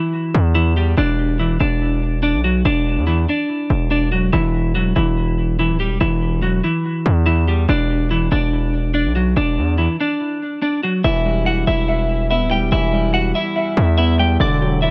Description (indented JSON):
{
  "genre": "hip hop, trap",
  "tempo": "143 BPM",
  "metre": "4/4",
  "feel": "half-time",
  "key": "E minor",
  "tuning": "A4 = 440 Hz",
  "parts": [
    { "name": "clean electric guitar", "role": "melody", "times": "0.0-14.9 s", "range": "E3 to D6", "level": "-22 LUFS", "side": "equal", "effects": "low-pass filter, analog delay" },
    { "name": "distorted 808-style bass", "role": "bass", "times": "0.3-14.9 s", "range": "D1 to E2", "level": "-20 LUFS", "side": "equal", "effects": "distortion" },
    { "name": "dark concert grand piano", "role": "accompaniment", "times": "11.0-14.9 s", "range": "D3 to E5", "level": "-23 LUFS", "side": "equal", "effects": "low-pass filter, analog delay" }
  ],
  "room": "light reverb, small room ambience",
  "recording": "echo-heavy mix",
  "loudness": "-18 LUFS",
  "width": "mono",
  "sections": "0.0-11.0 A section; 11.0-14.9 B section",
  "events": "break 10.2-11.0",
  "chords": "0.0 Em; 1.0 Bm/E (rootless); 4.3 Em; 7.7 Bm/E (rootless); 11.0 Em; 14.4 Bm/E (rootless)"
}